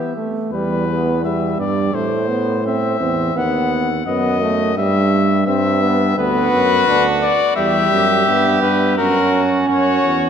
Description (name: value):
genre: classical, imitative canzona for brass ensemble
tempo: 85 BPM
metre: 4/4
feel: straight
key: E minor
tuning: A4 = 440 Hz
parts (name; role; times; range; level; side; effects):
- clear cornet; melody; 0.0-10.3 s; A#4 to F#5; -19 LUFS; left 6 dB; none
- clear trumpet; second line; 0.0-0.1, 6.2-10.3 s; F#4 to G4; -20 LUFS; right 4 dB; none
- warm trombone; accompaniment; 0.0-10.3 s; G3 to D4; -20 LUFS; right 3 dB; none
- warm bass trombone; bass; 0.0-10.3 s; D2 to E3; -20 LUFS; right 2 dB; none
room: wet concert hall reverb, RT60 2.5 s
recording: none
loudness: -14 LUFS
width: side -8 dB against mid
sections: 0.5-10.3 A section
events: none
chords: 0.0 Em; 1.9 Am; 3.4 B/D#; 4.8 Em/G; 6.2 Bm/D; 7.6 Em; 9.0 F#